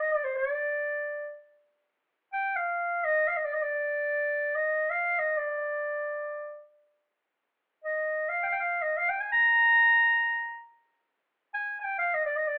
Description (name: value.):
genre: Turkish makam ensemble.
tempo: free time.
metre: none.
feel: none.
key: unclear.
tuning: A4 = 441 Hz.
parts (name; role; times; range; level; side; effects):
warm clarinet; solo; 0.0-12.6 s; C5 to Bb5; -27 LUFS; equal; none.
room: moderate studio reverb, RT60 0.8 s.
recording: band playing live in one room, telephone sound.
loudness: -27 LUFS.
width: mono.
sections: 0.0-12.6 A section.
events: none.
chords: none.